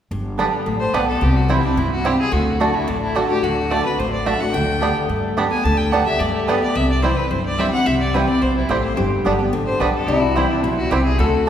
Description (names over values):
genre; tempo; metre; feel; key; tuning
bluegrass; 217 BPM; 4/4; straight; G major; A4 = 440 Hz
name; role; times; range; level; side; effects
picked steel-string acoustic guitar; accompaniment; 0.1-11.5 s; G2 to G4; -22 LUFS; left 1 dB; none
upright bass; bass; 0.1-11.5 s; G1 to G2; -22 LUFS; equal; none
bluegrass banjo; melody; 0.4-11.0 s; G3 to E4; -27 LUFS; right 2 dB; none
mandolin; stabs; 0.4-11.5 s; A3 to A5; -24 LUFS; right 4 dB; none
bright fiddle; melody; 0.8-11.5 s; D4 to A5; -23 LUFS; left 1 dB; none
lap resonator guitar; second line; 9.0-11.5 s; E4 to A4; -22 LUFS; left 4 dB; none
room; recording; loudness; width
wet church reverb, RT60 2.8 s; recorded in a church or concert hall; -16 LUFS; side -9 dB against mid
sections
0.1-11.5 A section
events
none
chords
0.1 Gadd9; 1.2 C; 2.3 D; 4.5 Gadd9/D; 6.8 C; 9.0 Gadd9; 10.1 C